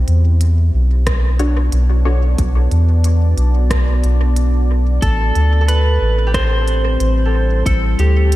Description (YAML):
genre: ambient dub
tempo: 91 BPM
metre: 4/4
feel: swing 57% on 16ths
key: unclear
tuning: A4 = 440 Hz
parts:
  - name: deep dark ambient pad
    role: sustained chords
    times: 0.0-8.4 s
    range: G3 to E5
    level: -25 LUFS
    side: left 1 dB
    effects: chorus, built-in reverb
  - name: soft dub sub bass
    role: bass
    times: 0.0-8.4 s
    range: A1 to E2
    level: -13 LUFS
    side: equal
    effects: tube saturation
  - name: organic electronic drum kit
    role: drums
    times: 0.1-8.4 s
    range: hi-hat, rim click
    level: -27 LUFS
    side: right 1 dB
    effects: dub echo
  - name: electronic kick drum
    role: drums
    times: 1.1-7.8 s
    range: none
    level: -20 LUFS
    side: equal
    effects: none
  - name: filtered dub chord stab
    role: stabs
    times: 1.4-2.2 s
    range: D4 to C#5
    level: -25 LUFS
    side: left 2 dB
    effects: wide subtle chorus, dub echo
  - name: electric slide guitar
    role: melody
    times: 5.0-8.4 s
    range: G4 to C5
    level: -20 LUFS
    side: equal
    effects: vintage 12-bit sampler grit, dub echo
  - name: concert harp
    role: arpeggios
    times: 5.6-8.4 s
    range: G4 to A4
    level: -26 LUFS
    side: right 5 dB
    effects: diffuse ambient delay
room: light reverb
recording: none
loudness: -13 LUFS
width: side -16 dB against mid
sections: 0.0-8.4 A section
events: none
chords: 0.0 Bm7; 5.0 Am7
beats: 0.41 1.07 1.73 | 2.38 3.04 3.70 4.36 | 5.02 5.68 6.34 7.00 | 7.66 8.32